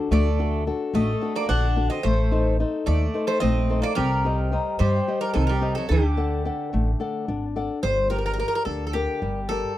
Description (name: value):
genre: greek folk, Greek bouzouki band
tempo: 217 BPM (eighths)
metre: 7/8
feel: straight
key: G harmonic minor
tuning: A4 = 440 Hz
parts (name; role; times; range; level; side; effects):
- fingerpicked old ladder-braced acoustic guitar; accompaniment; 0.0-9.8 s; D3 to F#5; -26 LUFS; left 4 dB; none
- Greek bouzouki; melody; 0.1-9.8 s; G4 to F#5; -27 LUFS; equal; none
- Greek bouzouki; second line; 0.1-7.3 s; D3 to D4; -30 LUFS; right 6 dB; none
- upright bass; bass; 0.1-9.6 s; G1 to G2; -24 LUFS; equal; none
room: little or no reverb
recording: dry, close 1970s-style studio recording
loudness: -21 LUFS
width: side -14 dB against mid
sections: 0.0-7.8 A section; 7.8-9.8 B section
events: none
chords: 0.0 D; 2.0 Adim; 4.0 Cm; 5.9 D; 7.8 Gm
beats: | 0.11 0.39 0.66 0.94 1.22 1.49 1.77 | 2.04 2.32 2.60 2.87 3.15 3.42 3.70 | 3.98 4.25 4.53 4.80 5.08 5.36 5.63 | 5.91 6.18 6.46 6.74 7.01 7.29 7.57 | 7.84 8.12 8.39 8.67 8.95 9.22 9.50 | 9.77